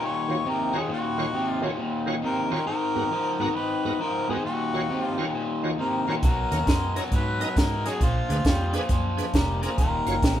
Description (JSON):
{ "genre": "electric blues shuffle", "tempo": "135 BPM", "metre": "4/4", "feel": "swing 65% on 8ths", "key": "Eb minor", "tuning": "A4 = 440 Hz", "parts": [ { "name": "mellow harmonica", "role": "melody", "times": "0.0-10.4 s", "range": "F4 to Db5", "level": "-29 LUFS", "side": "left 1 dB", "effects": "overdrive" }, { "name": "overdriven semi-hollow guitar", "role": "riff", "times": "0.0-10.4 s", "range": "Eb2 to Ab3", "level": "-27 LUFS", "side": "left 2 dB", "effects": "none" }, { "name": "bright tonewheel organ", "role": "accompaniment", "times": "0.3-10.2 s", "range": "Ab2 to D#5", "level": "-31 LUFS", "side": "right 3 dB", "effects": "overdrive, chorus vibrato, slow rotary speaker" }, { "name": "vintage muted fingered electric bass", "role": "bass", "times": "6.2-10.4 s", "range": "Eb1 to Ab2", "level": "-28 LUFS", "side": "equal", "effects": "none" }, { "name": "compact cocktail drum kit", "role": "drums", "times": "6.2-10.4 s", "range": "hi-hat, kick drum, snare drum", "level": "-24 LUFS", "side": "equal", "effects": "none" } ], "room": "moderate studio ambience, RT60 0.5 s", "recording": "band playing live in one room", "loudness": "-23 LUFS", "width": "side -11 dB against mid", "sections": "0.0-10.4 A section", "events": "none", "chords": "0.0 Ebm9; 2.7 Abm9; 4.4 Ebm9; 6.2 Bmaj7; 8.0 Bb7b9; 9.8 Ebm9", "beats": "0.01 0.45 | 0.89 1.34 1.78 2.23 | 2.67 3.12 3.56 4.00 | 4.45 4.89 5.34 5.78 | 6.23 6.67 7.12 7.56 | 8.00 8.45 8.89 9.34 | 9.78 10.22" }